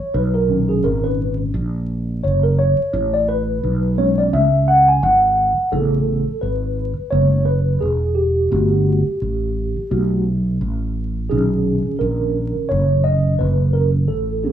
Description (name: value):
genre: hip hop, jazz-hop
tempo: 86 BPM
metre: 4/4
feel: swing 57% on 16ths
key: unclear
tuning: A4 = 440 Hz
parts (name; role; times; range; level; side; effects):
- mellow tine electric piano; accompaniment; 0.0-14.5 s; A#2 to G#5; -18 LUFS; equal; medium stereo tremolo
- mellow fretless electric bass; bass; 0.0-14.5 s; E1 to C#2; -19 LUFS; right 1 dB; none
room: wet studio ambience, RT60 0.5 s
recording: band playing live in one room, vinyl crackle, small room ambience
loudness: -16 LUFS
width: side -10 dB against mid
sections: 0.0-5.7 A section; 5.7-14.5 B section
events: tine electric piano solo 0.0-5.7, 5.7-14.5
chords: 0.1 Bmaj9; 2.9 Amaj9; 8.5 Gmaj9; 11.3 Bmaj9